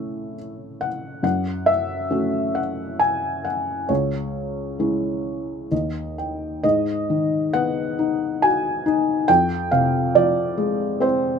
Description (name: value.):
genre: classical, lyrical solo piano.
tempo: 67 BPM.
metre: 3/4.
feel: uneven beats, rubato.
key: C# minor.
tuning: A4 = 439 Hz.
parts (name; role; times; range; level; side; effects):
felt-muted upright piano; solo; 0.0-11.4 s; C#2 to G#5; -20 LUFS; equal; none.
room: light reverb.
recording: minimal, uncompressed stereo recording.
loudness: -20 LUFS.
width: side -6 dB against mid.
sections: 0.0-6.6 A section; 6.6-11.4 B section.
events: felt piano fill 5.3-6.6.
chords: 0.0 A; 1.2 F#m; 3.9 C#m; 5.7 N.C.; 6.6 G#m7; 9.3 Fm.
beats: 0.38 | 1.24 2.11 3.00 | 3.90 4.80 5.71 | 6.64 7.54 8.42 | 9.29 10.16 11.02.